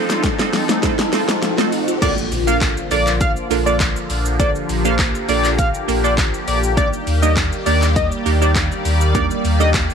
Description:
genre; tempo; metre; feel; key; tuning
dance-pop; 101 BPM; 4/4; straight; Bb major; A4 = 436 Hz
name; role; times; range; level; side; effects
glassy wavetable pluck; accompaniment; 0.0-9.9 s; Bb3 to C5; -23 LUFS; right 15 dB; chorus
sweeping resonant pad; sustained chords; 0.0-9.9 s; D3 to D5; -22 LUFS; left 1 dB; chorus, phaser, sidechain pumping
glassy wavetable pluck; arpeggios; 0.0-2.0 s; F3 to Eb5; -26 LUFS; left 16 dB; chorus, sidechain pumping, tape echo
riser and impact; sound effects; 0.0-4.4 s; none; -27 LUFS; right 1 dB; none
pop drum kit; drums; 0.1-9.9 s; crash cymbal, handclaps, hi-hat, kick drum, shaker, snare drum; -21 LUFS; left 1 dB; none
octave-doubled lead; melody; 2.0-9.7 s; D5 to F5; -22 LUFS; left 2 dB; chorus, sidechain pumping, tape echo
sub bass with octave; bass; 2.3-9.9 s; Bb1 to Eb2; -19 LUFS; left 1 dB; sidechain pumping
room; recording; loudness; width
little or no reverb; 1960s-style stereo with parts hard left and right; -15 LUFS; side -7 dB against mid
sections
0.0-2.0 A section; 2.0-9.9 B section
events
build-up 0.0-2.0; drum fill 0.0-2.0; riser 0.0-2.0; filter sweep 0.0-2.0; drop 2.0-9.9; impact 2.0-4.4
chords
0.0 F7; 2.0 Bbmaj7; 6.8 Ebmaj7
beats
0.24 0.83 1.43 | 2.02 2.61 3.21 3.80 | 4.39 4.99 5.58 6.18 | 6.77 7.37 7.96 8.55 | 9.15 9.74

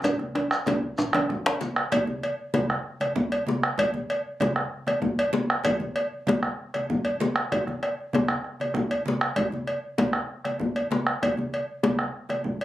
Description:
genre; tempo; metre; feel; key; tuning
west african traditional, West African drum ensemble; 129 BPM (dotted quarters); 12/8; straight; none; none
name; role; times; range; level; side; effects
bombo; percussion; 0.0-12.6 s; none; -28 LUFS; right 1 dB; none
congas; percussion; 0.0-12.6 s; none; -34 LUFS; right 2 dB; none
cowbell; percussion; 0.0-12.6 s; none; -28 LUFS; equal; none
djembe; percussion; 0.0-12.4 s; none; -29 LUFS; left 3 dB; none
djembe; percussion; 0.0-1.6 s; none; -27 LUFS; equal; none
shekere; percussion; 0.0-1.7 s; none; -41 LUFS; equal; none
room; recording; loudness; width
wet studio reverb, RT60 0.5 s; recorded on a phone in the room, club reverb, compression; -24 LUFS; side -14 dB against mid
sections
0.0-1.9 A section; 1.9-12.6 B section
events
drum fill 0.0-1.9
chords
none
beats
| 0.04 0.51 0.98 1.45 | 1.92 2.39 2.86 3.32 | 3.79 4.26 4.72 5.19 | 5.66 6.12 6.59 7.05 | 7.52 7.98 8.45 8.91 | 9.37 9.84 10.30 10.76 | 11.22 11.69 12.15 12.61

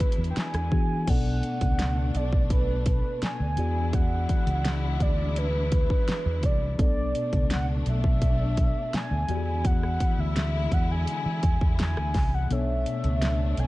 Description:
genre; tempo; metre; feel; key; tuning
contemporary R&B; 84 BPM; 4/4; straight; B dorian; A4 = 440 Hz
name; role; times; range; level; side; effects
mellow horn-like synth lead; melody; 0.0-13.7 s; B4 to G#5; -32 LUFS; right 1 dB; chorus, digital delay
mellow tine electric piano; accompaniment; 0.0-13.7 s; B2 to D5; -32 LUFS; left 3 dB; slow stereo tremolo
warm studio string section; sustained chords; 0.0-13.7 s; B2 to E4; -37 LUFS; left 2 dB; sidechain pumping
pop drum kit; drums; 0.0-13.7 s; crash cymbal, hi-hat, kick drum, rim click, snare drum; -26 LUFS; equal; vintage 12-bit sampler grit
fingered electric bass; bass; 0.2-13.7 s; B1 to E3; -27 LUFS; equal; none
room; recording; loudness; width
digital ambience; none; -23 LUFS; side -18 dB against mid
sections
0.0-1.1 A section; 1.1-13.7 B section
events
kick muted 12.5-13.7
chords
0.0 E7; 1.1 Bm7; 3.6 E7; 6.8 Bm7; 9.3 E7; 12.5 Bm7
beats
0.36 | 1.07 1.79 2.50 3.22 | 3.93 4.65 5.36 6.08 | 6.79 7.50 8.22 8.93 | 9.65 10.36 11.07 11.79 | 12.50 13.22

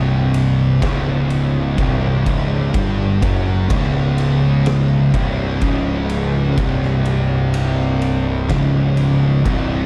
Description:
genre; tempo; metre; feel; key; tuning
stoner and doom metal; 62 BPM; 4/4; straight; unclear; A4 = 440 Hz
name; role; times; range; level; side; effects
thick fuzz guitar; riff; 0.0-9.9 s; C2 to G3; -21 LUFS; equal; distortion
thick fuzz guitar; riff; 0.0-9.9 s; C2 to G3; -25 LUFS; equal; distortion
thick fuzz guitar; riff; 0.0-9.9 s; C2 to G3; -27 LUFS; equal; distortion
fuzz picked electric bass; bass; 0.0-9.9 s; C1 to G1; -24 LUFS; equal; overdrive
oversized low-tuned drum kit; drums; 0.3-9.7 s; kick drum, ride cymbal, snare drum; -26 LUFS; equal; none
room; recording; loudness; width
little or no reverb; dark, warm production, lossy compression artefacts; -17 LUFS; mono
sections
0.0-9.9 A section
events
none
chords
0.0 C5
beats
0.82 1.78 | 2.74 3.70 4.66 5.62 | 6.58 7.54 8.50 9.46

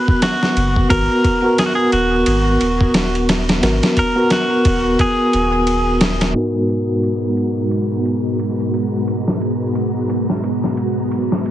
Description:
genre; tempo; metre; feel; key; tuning
trip hop; 88 BPM; 4/4; swing 59% on 16ths; G# minor; A4 = 440 Hz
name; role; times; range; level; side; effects
clean electric guitar; melody; 0.0-6.0 s; F#4 to B4; -20 LUFS; equal; tape echo
mellow tine electric piano; accompaniment; 0.0-11.5 s; G#2 to B4; -18 LUFS; equal; tremolo, tape echo
dusty soul sampler-style drum kit; drums; 0.1-11.5 s; kick drum, ride cymbal, snare drum; -19 LUFS; equal; overdrive, low-pass filter on cymbals, low-pass filter on snare, low-pass filter on kick, low-pass filter on room
warm sub bass; bass; 0.6-6.3 s; D#1 to G#1; -20 LUFS; equal; none
string machine, cellos; sustained chords; 6.4-11.5 s; G#3 to A#5; -19 LUFS; equal; ensemble chorus
room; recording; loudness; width
light reverb; heavily compressed radio sound, multiband compression, low-pass filter, nothing above 10.9 kHz; -14 LUFS; side -12 dB against mid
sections
0.0-6.4 A section; 6.4-11.5 B section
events
filter sweep on tine electric piano 0.0-6.4; filter sweep 6.4-11.5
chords
0.0 G#m9 (rootless); 6.4 G#m9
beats
0.22 | 0.90 1.58 2.26 2.94 | 3.63 4.31 4.99 5.67 | 6.35 7.04 7.72 8.40 | 9.08 9.76 10.45 11.13

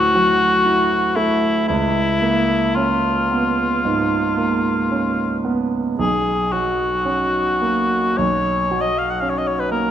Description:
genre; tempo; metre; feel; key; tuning
classical, impressionist duo for cor anglais and grand piano; 51-62 BPM; 4/4; rubato; unclear; A4 = 440 Hz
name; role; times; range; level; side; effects
warm cor anglais; melody; 0.0-9.9 s; E4 to F#5; -18 LUFS; left 2 dB; none
clear concert grand piano; accompaniment; 0.0-9.9 s; B1 to E4; -20 LUFS; right 3 dB; none
room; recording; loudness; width
wet scoring stage reverb, RT60 1.9 s; none; -16 LUFS; side -10 dB against mid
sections
0.0-9.9 A section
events
none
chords
0.0 Dadd9; 1.7 C#6; 6.0 Bsus2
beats
0.65 | 1.69 2.76 3.84 4.91 | 5.99 7.06 8.19 9.22

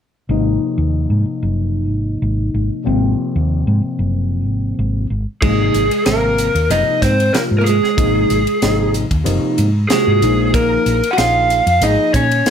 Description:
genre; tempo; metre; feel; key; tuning
electric jazz fusion; 94 BPM; 4/4; swing 53% on 16ths; unclear; A4 = 440 Hz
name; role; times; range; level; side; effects
overdriven tine electric piano; accompaniment; 0.3-12.5 s; C3 to Bb4; -20 LUFS; left 3 dB; phaser
woody fretless electric bass; bass; 0.3-12.5 s; Gb1 to Bb2; -17 LUFS; equal; none
lead guitar through a small cranked amp; melody; 5.4-12.5 s; Ab4 to Gb5; -16 LUFS; equal; overdrive
archtop guitar, miked and amplified; second line; 5.4-12.5 s; Ab3 to Gb4; -22 LUFS; right 7 dB; none
crisp fusion drum kit; drums; 5.4-12.5 s; crash cymbal, hi-hat, kick drum, ride cymbal, snare drum; -22 LUFS; equal; none
room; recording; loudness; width
light reverb; none; -14 LUFS; side -8 dB against mid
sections
0.3-5.4 A section; 5.4-12.5 B section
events
none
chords
0.3 Ab13; 5.1 N.C.; 5.4 Ab13; 10.2 Bbm7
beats
| 0.29 0.94 1.58 2.22 | 2.86 3.50 4.14 4.78 | 5.42 6.06 6.70 7.34 | 7.98 8.62 9.26 9.90 | 10.54 11.18 11.82 12.46

